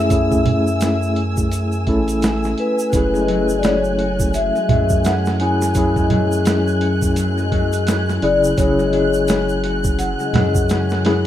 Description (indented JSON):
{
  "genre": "trip hop",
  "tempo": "85 BPM",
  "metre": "4/4",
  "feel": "swing 60% on 16ths",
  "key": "F# minor",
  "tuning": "A4 = 440 Hz",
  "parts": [
    { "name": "vibraphone with soft mallets", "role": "melody", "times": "0.0-11.3 s", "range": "B4 to G#5", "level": "-22 LUFS", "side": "left 2 dB", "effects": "tape echo" },
    { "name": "tine electric piano", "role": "accompaniment", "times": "0.0-11.3 s", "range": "C#3 to A4", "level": "-21 LUFS", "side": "left 1 dB", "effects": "medium tremolo, tape echo" },
    { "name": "muted symphonic violin section", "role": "sustained chords", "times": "0.0-11.3 s", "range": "G#5 to F#6", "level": "-28 LUFS", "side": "right 1 dB", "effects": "none" },
    { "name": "round analog bass", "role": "bass", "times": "0.0-11.3 s", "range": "F#1 to F#2", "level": "-22 LUFS", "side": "right 1 dB", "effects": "tube saturation" },
    { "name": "boom bap sampler-style drum kit", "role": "drums", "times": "0.1-11.3 s", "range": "hi-hat, kick drum, snare drum", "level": "-21 LUFS", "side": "right 1 dB", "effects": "none" },
    { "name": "tube shaker and congas", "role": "percussion", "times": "0.1-11.0 s", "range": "none", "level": "-25 LUFS", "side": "right 5 dB", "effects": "none" },
    { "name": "concert harp", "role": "arpeggios", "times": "2.9-11.3 s", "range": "F#3 to F#4", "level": "-22 LUFS", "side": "left 4 dB", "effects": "tape echo" }
  ],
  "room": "little or no reverb",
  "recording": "rough home demo mix",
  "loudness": "-15 LUFS",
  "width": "side -11 dB against mid",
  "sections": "0.0-11.3 A section",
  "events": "none",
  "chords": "0.0 F#m9",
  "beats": "| 0.11 0.81 1.52 2.22 | 2.93 3.64 4.34 5.05 | 5.75 6.46 7.17 7.87 | 8.58 9.28 9.99 10.70"
}